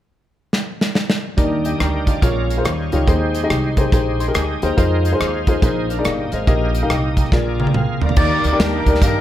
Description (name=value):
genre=uptempo gospel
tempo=141 BPM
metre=4/4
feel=swing 65% on 8ths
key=Eb major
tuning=A4 = 440 Hz
part: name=modern studio drum kit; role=drums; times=0.5-9.1 s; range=crash cymbal, hi-hat, kick drum, rim click, snare drum, toms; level=-19 LUFS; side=equal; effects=none
part: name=warm baby grand piano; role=accompaniment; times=1.4-9.2 s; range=Bb2 to C6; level=-21 LUFS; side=left 3 dB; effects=none
part: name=bright tonewheel organ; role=sustained chords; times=1.4-9.2 s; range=Eb3 to Bb5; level=-25 LUFS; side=right 3 dB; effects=slow rotary speaker, overdrive, chorus vibrato
part: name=upright bass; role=bass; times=1.4-9.2 s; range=G1 to G2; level=-21 LUFS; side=equal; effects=none
part: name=mellow horn section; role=melody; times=8.2-9.2 s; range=D4 to D5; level=-19 LUFS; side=equal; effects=none
room=light reverb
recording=none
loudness=-15 LUFS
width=side -12 dB against mid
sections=0.0-1.4 A section; 1.4-8.2 B section; 8.2-9.2 C section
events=drum fill 0.5-1.4, 7.3-8.2; grand piano fill 3.9-4.8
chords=0.0 N.C.; 1.4 Ebmaj7; 2.2 Bbm7; 2.7 Eb9; 3.1 Abmaj7; 4.8 Fm7; 5.6 Bb9sus4; 6.5 Eb/Bb; 7.3 Bb7; 8.2 Ebmaj7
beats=0.11 0.53 0.95 | 1.38 1.80 2.23 2.65 | 3.08 3.50 3.93 4.35 | 4.78 5.20 5.63 6.05 | 6.48 6.90 7.33 7.75 | 8.17 8.60 9.02